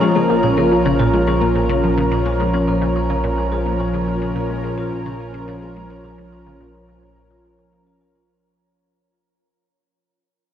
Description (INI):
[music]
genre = ambient, sequencer-driven space music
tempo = 107 BPM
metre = 4/4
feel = straight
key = Bb minor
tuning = A4 = 441 Hz
[part]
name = lush unison pad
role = sustained chords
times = 0.0-8.2 s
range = F3 to Bb4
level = -19 LUFS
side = equal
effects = chorus
[part]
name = vibraphone with medium hard mallets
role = arpeggios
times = 0.0-8.2 s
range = Bb3 to F5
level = -26 LUFS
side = left 2 dB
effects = auto-pan, ping-pong delay
[part]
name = resonant blip pluck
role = riff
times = 0.0-8.2 s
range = Bb2 to F4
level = -23 LUFS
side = left 2 dB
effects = phaser, ping-pong delay
[part]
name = analog drone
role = bass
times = 0.3-8.3 s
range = Bb1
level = -25 LUFS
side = equal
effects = chorus
[sound]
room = wet huge ambient reverb, RT60 9.0 s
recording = worn, warbling old tape, cassette tape, warbly pitch drift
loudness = -16 LUFS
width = side -10 dB against mid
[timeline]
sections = 0.0-8.3 A section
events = fade-out on synth arpeggio sound 0.0-8.3; fade-out on vibraphone 0.0-8.3; fade-out 0.0-8.3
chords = 0.0 Bbm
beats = 0.43 0.99 | 1.55 2.12 2.68 3.24 | 3.80 4.36 4.92 5.48 | 6.04 6.60 7.16 7.72